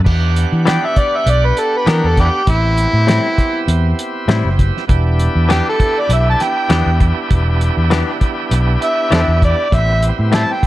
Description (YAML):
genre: straight-eighth soul blues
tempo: 99 BPM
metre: 4/4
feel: swing 56% on 16ths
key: E minor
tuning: A4 = 438 Hz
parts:
  - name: bright tonewheel organ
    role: accompaniment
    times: 0.0-10.7 s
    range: B3 to F#5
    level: -22 LUFS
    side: right 3 dB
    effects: slow rotary speaker, overdrive
  - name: fingered electric bass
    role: bass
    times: 0.0-10.4 s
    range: E1 to E3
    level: -14 LUFS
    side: equal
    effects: none
  - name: cloth-damped thuddy drum kit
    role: drums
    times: 0.1-10.7 s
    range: crash cymbal, hi-hat, kick drum, snare drum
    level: -17 LUFS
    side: equal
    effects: none
  - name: overdriven harmonica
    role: melody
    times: 0.7-10.6 s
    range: D4 to A5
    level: -17 LUFS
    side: equal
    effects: none
  - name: direct-recorded clean electric guitar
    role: stabs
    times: 0.7-10.5 s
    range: A2 to G4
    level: -22 LUFS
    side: left 6 dB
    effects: none
room: light reverb, studio reverb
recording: none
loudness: -12 LUFS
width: side -16 dB against mid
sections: 0.1-10.7 A section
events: harmonica solo 0.1-10.7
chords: 0.1 Em7; 2.5 Am7; 4.9 Em7; 9.7 Am7